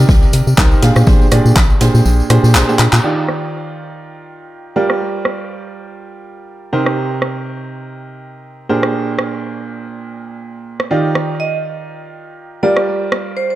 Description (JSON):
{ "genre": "piano house", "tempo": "122 BPM", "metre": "4/4", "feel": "swing 56% on 16ths", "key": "unclear", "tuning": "A4 = 440 Hz", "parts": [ { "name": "bright upright piano", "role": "riff", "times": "0.0-13.6 s", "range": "Bb2 to F5", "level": "-18 LUFS", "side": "right 2 dB", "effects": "sidechain pumping, analog delay" }, { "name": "organ-like FM bass", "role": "bass", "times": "0.0-3.0 s", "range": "Bb1 to C3", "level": "-11 LUFS", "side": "equal", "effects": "sidechain pumping" }, { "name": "electronic kick drum", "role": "drums", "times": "0.1-1.7 s", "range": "none", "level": "-12 LUFS", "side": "equal", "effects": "overdrive, studio reverb" }, { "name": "snare drum and tambourine", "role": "drums", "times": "0.1-2.9 s", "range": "none", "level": "-29 LUFS", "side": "right 1 dB", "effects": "high-pass filter on hats, studio reverb, high-pass filter on snare, high-pass filter on perc, high-pass filter on room, analog delay" }, { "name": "tambourine", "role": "percussion", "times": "0.1-3.0 s", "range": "none", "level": "-32 LUFS", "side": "left 2 dB", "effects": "none" }, { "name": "garage drum kit", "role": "drums", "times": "0.3-13.2 s", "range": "handclaps, hi-hat, rim click", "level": "-19 LUFS", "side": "right 1 dB", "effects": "overdrive, low-pass filter on hats, studio reverb, low-pass filter on snare" }, { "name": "vibraphone with medium hard mallets", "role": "melody", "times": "11.4-13.6 s", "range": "C5 to Eb5", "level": "-19 LUFS", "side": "right 1 dB", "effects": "analog delay" } ], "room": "moderate spring reverb, RT60 1.9 s", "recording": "echo-heavy mix", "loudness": "-12 LUFS", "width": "side -15 dB against mid", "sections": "0.0-3.0 A section; 3.0-13.6 B section", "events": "kick drops out 2.1-3.0; drum fill 2.8; band accent 2.9", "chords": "0.0 Cm7; 0.8 Bb13; 3.0 Ebmaj9; 4.8 Gm7; 6.7 Cm7; 8.7 Bb13; 10.9 Ebmaj9; 12.6 Gm7" }